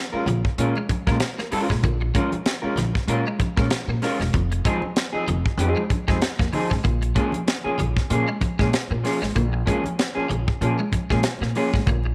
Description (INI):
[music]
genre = funk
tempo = 96 BPM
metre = 4/4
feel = swing 56% on 16ths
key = Bb minor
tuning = A4 = 439 Hz
[part]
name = semi-hollow electric guitar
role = accompaniment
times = 0.1-11.8 s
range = F3 to Bb4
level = -28 LUFS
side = equal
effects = lush chorus
[part]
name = upright bass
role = bass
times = 0.1-12.1 s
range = E1 to Bb2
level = -27 LUFS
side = equal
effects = none
[part]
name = electric guitar at the edge of break-up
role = riff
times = 0.3-12.1 s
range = F3 to Bb3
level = -34 LUFS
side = equal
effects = ensemble chorus
[part]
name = tight funk drum kit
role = drums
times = 0.3-12.0 s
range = hi-hat, kick drum, snare drum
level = -26 LUFS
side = equal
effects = none
[part]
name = congas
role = percussion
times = 0.3-12.1 s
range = none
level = -35 LUFS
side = equal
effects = none
[sound]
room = light reverb, studio ambience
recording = none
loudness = -23 LUFS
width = mono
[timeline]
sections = 0.0-12.1 A section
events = none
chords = 0.0 Bbm7; 4.3 Fm7; 6.8 Bbm7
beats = 0.58 1.21 | 1.83 2.46 3.08 3.71 | 4.34 4.96 5.59 6.22 | 6.84 7.47 8.10 8.73 | 9.35 9.98 10.61 11.24 | 11.87